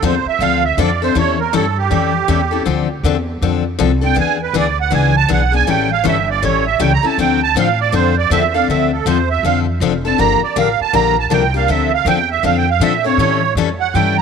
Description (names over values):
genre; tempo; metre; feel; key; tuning
acoustic string swing (jazz manouche); 160 BPM; 4/4; swing 62% on 8ths; D minor; A4 = 440 Hz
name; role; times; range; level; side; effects
musette accordion; melody; 0.0-14.2 s; G4 to Bb5; -16 LUFS; right 12 dB; none
picked steel-string acoustic guitar; accompaniment; 0.0-14.2 s; D3 to A4; -17 LUFS; left 11 dB; none
upright bass; bass; 0.0-14.2 s; F1 to Bb2; -19 LUFS; right 1 dB; none
room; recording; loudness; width
light reverb, small room ambience; 1960s-style stereo with parts hard left and right; -13 LUFS; side -6 dB against mid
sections
0.0-8.7 A section; 8.7-14.2 A section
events
accordion solo 0.0-14.2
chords
0.0 Dm7; 1.2 A7; 2.7 Dm9; 4.2 E7; 5.7 A7; 7.2 Dm7; 10.2 Gm7; 11.7 Dm7; 13.2 A7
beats
0.03 0.41 0.78 | 1.16 1.54 1.91 2.29 | 2.67 3.04 3.42 3.79 | 4.17 4.55 4.92 5.30 | 5.67 6.05 6.43 6.80 | 7.18 7.55 7.93 8.30 | 8.68 9.06 9.43 9.81 | 10.19 10.56 10.94 11.31 | 11.69 12.06 12.44 12.82 | 13.19 13.57 13.94